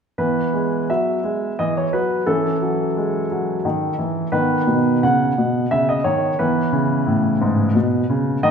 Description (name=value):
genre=classical-period piano sonatina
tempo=88 BPM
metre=3/4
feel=straight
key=E major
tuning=A4 = 440 Hz
part: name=clear baby grand piano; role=solo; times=0.2-8.5 s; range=G#2 to F#5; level=-17 LUFS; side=equal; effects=none
room=wet scoring stage reverb, RT60 1.9 s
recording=recorded in a church or concert hall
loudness=-17 LUFS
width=side -6 dB against mid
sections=0.2-8.5 A section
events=none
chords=0.2 E; 2.3 F#m7/E; 4.3 B; 6.4 E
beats=| 0.18 0.89 1.58 | 2.27 2.96 3.65 | 4.33 5.03 5.71 | 6.39 7.07 7.75 | 8.43